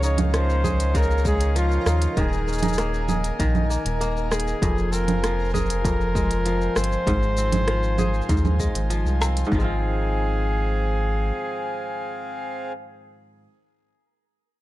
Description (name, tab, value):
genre	folktronica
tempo	98 BPM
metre	4/4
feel	straight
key	Ab major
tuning	A4 = 442 Hz
part	warm flugelhorn	melody	0.0-12.7 s	F4 to Db5	-28 LUFS	left 1 dB	ping-pong delay
part	pedal harmonium	sustained chords	0.0-12.7 s	C4 to Ab5	-32 LUFS	right 1 dB	none
part	kora	arpeggios	0.0-13.5 s	F2 to Ab4	-28 LUFS	left 1 dB	vintage 12-bit sampler grit, ping-pong delay
part	round analog bass	bass	0.0-11.3 s	Eb1 to Eb2	-23 LUFS	equal	tube saturation
part	organic electronic drum kit	drums	0.0-9.7 s	congas, hi-hat, rim click, shaker	-27 LUFS	right 3 dB	overdrive
part	flickering grainy texture	texture	0.0-9.5 s	Bb4 to Bb5	-39 LUFS	equal	none
part	electronic kick drum	drums	0.6-9.6 s	none	-25 LUFS	equal	overdrive
room	small room ambience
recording	dark, warm production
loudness	-20 LUFS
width	side -16 dB against mid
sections	0.0-9.5 A section; 9.5-12.0 B section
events	none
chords	0.0 Dbadd9; 2.2 Ebsus4; 4.6 Fm; 7.1 Ab6